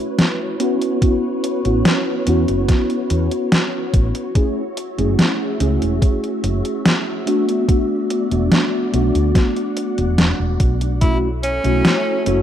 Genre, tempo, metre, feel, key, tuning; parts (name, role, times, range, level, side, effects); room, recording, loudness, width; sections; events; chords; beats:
vaporwave; 72 BPM; 4/4; straight; A4 = 436 Hz
mellow tine electric piano; accompaniment; 0.0-12.4 s; A3 to G#4; -20 LUFS; equal; medium stereo tremolo, ensemble chorus, tape echo
soft string machine; sustained chords; 0.0-12.4 s; E4 to B5; -28 LUFS; equal; phaser, ensemble chorus
detuned 8-bit digital drum machine; drums; 0.2-12.4 s; hi-hat, snare drum; -18 LUFS; equal; overdrive, small room ambience
electronic kick drum; drums; 1.0-11.2 s; -16 LUFS; equal; overdrive, small room ambience
woody fretless electric bass; bass; 1.7-12.4 s; E1 to E2; -19 LUFS; equal; tube saturation, ensemble chorus
clear tenor saxophone; melody; 11.0-12.4 s; C#4 to E4; -21 LUFS; equal; tape echo
light reverb; rough home demo mix; -16 LUFS; side -10 dB against mid
0.0-12.4 A section
0.0 B9sus4; 4.4 F#m7; 7.3 E9sus4; 11.0 B9sus4
0.19 | 1.02 1.85 2.69 3.52 | 4.35 5.19 6.02 6.85 | 7.69 8.52 9.35 10.19 | 11.02 11.85